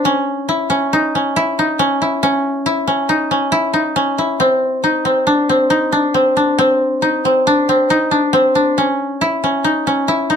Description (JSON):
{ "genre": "progressive instrumental, progressive", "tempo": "137 BPM", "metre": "5/4", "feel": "straight", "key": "unclear", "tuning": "A4 = 440 Hz", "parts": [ { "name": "koto", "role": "solo", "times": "0.0-10.4 s", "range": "C4 to E4", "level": "-13 LUFS", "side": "equal", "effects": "none" } ], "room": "light reverb", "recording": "close, detailed microphones, lossy compression artefacts", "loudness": "-13 LUFS", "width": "side -7 dB against mid", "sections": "0.0-10.4 A section", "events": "none", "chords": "0.0 C#m; 4.4 Cmadd9; 8.8 C#m" }